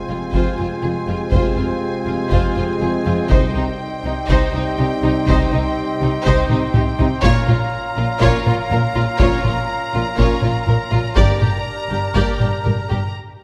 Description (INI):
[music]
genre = cinematic, epic orchestral film score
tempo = 122 BPM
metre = 4/4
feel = straight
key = F minor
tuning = A4 = 440 Hz
[part]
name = warm symphonic violin section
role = melody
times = 0.0-13.1 s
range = G5 to Bb5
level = -31 LUFS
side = equal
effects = none
[part]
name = dark trombone section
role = sustained chords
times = 0.0-12.3 s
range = G2 to Bb3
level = -29 LUFS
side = equal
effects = none
[part]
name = mellow French horn section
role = sustained chords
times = 0.0-12.3 s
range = C4 to G4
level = -29 LUFS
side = equal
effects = none
[part]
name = warm woodwind section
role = sustained chords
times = 0.0-13.2 s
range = C4 to F5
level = -29 LUFS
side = equal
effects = none
[part]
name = impact and cymbal swell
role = sound effects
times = 0.0-1.3, 13.2-13.4 s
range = none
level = -46 LUFS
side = equal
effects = none
[part]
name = warm symphonic violin section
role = second line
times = 0.1-13.0 s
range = Eb4 to D5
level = -28 LUFS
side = equal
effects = none
[part]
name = clear studio viola section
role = accompaniment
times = 0.1-13.0 s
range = Eb4 to G4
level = -29 LUFS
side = equal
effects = none
[part]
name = warm symphonic cello section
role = bass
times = 0.1-13.0 s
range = F2 to C3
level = -26 LUFS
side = equal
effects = none
[part]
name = warm symphonic double bass section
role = bass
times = 0.1-13.0 s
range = F1 to C2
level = -25 LUFS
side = equal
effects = none
[part]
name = taiko ensemble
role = drums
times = 0.3-13.1 s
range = none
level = -22 LUFS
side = equal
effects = none
[part]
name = timpani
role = percussion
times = 3.3-4.0 s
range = C3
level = -30 LUFS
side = equal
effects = none
[sound]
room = moderate scoring stage reverb, RT60 1.8 s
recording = none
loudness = -18 LUFS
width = mono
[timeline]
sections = 0.0-13.4 A section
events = impact 0.0-1.3; drum fill 6.5-7.2; break 13.2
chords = 0.0 Fm; 3.3 Cm; 7.2 Bbm; 11.2 Gm